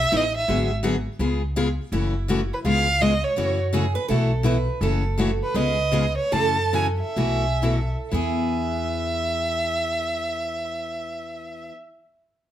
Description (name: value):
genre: acoustic string swing (jazz manouche)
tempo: 116-166 BPM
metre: 4/4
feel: swing 62% on 8ths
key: E major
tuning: A4 = 443 Hz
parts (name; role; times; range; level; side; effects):
- warm violin; melody; 0.0-11.7 s; B4 to A5; -24 LUFS; right 2 dB; none
- upright bass; bass; 0.0-11.7 s; F#1 to F#2; -26 LUFS; equal; none
- picked steel-string acoustic guitar; accompaniment; 0.1-11.8 s; B2 to G#4; -26 LUFS; left 3 dB; none
- picked steel-string acoustic guitar; second line; 1.9-11.7 s; E4 to B4; -30 LUFS; right 5 dB; none
room: moderate studio reverb, RT60 0.9 s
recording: none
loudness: -21 LUFS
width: side -11 dB against mid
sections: 0.0-1.9 A section; 1.9-8.1 B section; 8.1-12.3 C section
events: slowing down 4.8-8.1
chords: 0.5 G#m7b5; 1.2 C#7; 1.9 F#m7; 2.6 C#7; 3.4 F#m7; 4.1 B7sus4; 4.8 F#m7; 5.5 C#7; 6.3 F#m7; 7.2 B7sus4; 8.1 E